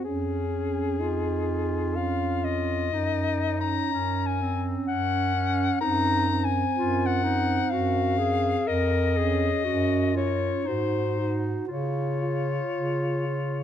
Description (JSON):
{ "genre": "classical, lyrical piece for single-reed quartet", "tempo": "62 BPM", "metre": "3/4", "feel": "uneven beats, rubato", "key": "Db major", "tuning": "A4 = 440 Hz", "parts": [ { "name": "mellow soprano saxophone", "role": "melody", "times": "0.0-13.6 s", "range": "Ab4 to Bb5", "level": "-28 LUFS", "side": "left 7 dB", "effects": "none" }, { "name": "mellow alto saxophone", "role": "second line", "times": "0.0-13.6 s", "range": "C4 to Gb4", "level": "-32 LUFS", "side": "right 8 dB", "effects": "none" }, { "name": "warm bass clarinet", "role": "bass", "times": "0.0-13.6 s", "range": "F2 to Db3", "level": "-28 LUFS", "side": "right 2 dB", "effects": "none" }, { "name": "clear clarinet", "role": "accompaniment", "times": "0.1-13.6 s", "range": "C4 to Bb4", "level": "-31 LUFS", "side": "left 2 dB", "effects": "none" } ], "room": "light reverb", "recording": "close, detailed microphones", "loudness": "-23 LUFS", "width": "side -10 dB against mid", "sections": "0.0-13.6 A section", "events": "none", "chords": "0.1 Db/F; 2.9 Ebm7/Gb; 5.8 Gbmaj9#11; 8.7 Db/F; 9.6 Gb5; 10.7 Ab7; 11.7 Db" }